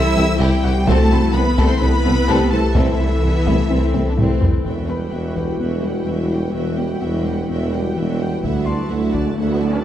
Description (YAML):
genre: cinematic, hybrid orchestral and electronic film score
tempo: 127 BPM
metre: 4/4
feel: straight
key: E minor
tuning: A4 = 439 Hz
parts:
  - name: warm symphonic violin section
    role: melody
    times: 0.0-9.8 s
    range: E5 to E6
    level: -29 LUFS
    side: left 2 dB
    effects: none
  - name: rich symphonic viola section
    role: accompaniment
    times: 0.0-9.8 s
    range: E4 to E5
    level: -30 LUFS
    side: right 2 dB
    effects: none
  - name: glassy FM pad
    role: sustained chords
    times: 0.0-9.8 s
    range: E3 to C5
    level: -24 LUFS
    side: left 2 dB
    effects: ensemble chorus, built-in reverb
  - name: warm French horn section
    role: sustained chords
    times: 0.0-4.4 s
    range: E4 to A4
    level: -27 LUFS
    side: left 4 dB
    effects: none
  - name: warbly dusty pluck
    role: arpeggios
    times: 0.0-9.8 s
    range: C3 to E4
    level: -27 LUFS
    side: left 5 dB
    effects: chorus, tape echo
  - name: pure sine sub bass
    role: bass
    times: 0.0-4.6 s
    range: C2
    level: -20 LUFS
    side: equal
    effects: none
  - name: rich symphonic cello section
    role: bass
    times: 0.0-9.8 s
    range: D2 to E4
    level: -24 LUFS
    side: right 2 dB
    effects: none
  - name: warm tuba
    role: bass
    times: 0.0-9.8 s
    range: E1 to D2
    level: -24 LUFS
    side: right 3 dB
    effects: none
  - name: bright baby grand piano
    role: texture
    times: 0.0-9.8 s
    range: F#4 to C6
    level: -36 LUFS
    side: left 3 dB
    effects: tape echo
  - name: warm symphonic violin section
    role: second line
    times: 0.2-9.8 s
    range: B3 to G5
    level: -28 LUFS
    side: left 2 dB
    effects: none
  - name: rich symphonic double bass section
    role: bass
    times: 0.2-4.5 s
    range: C2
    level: -25 LUFS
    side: right 2 dB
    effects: none
  - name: taiko ensemble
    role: drums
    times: 0.9-5.6, 8.4-9.4 s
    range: none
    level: -22 LUFS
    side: equal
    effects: none
  - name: riser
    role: sound effects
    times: 9.3-9.8 s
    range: none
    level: -26 LUFS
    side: right 2 dB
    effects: none
room: moderate scoring stage reverb, RT60 1.6 s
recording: none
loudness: -16 LUFS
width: side -11 dB against mid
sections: 0.0-4.7 A section; 4.7-9.8 B section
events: drum fill 3.9-4.7; riser 9.3-9.8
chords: 0.0 C; 0.9 Amadd9/C; 4.7 Emadd9; 8.4 Dadd9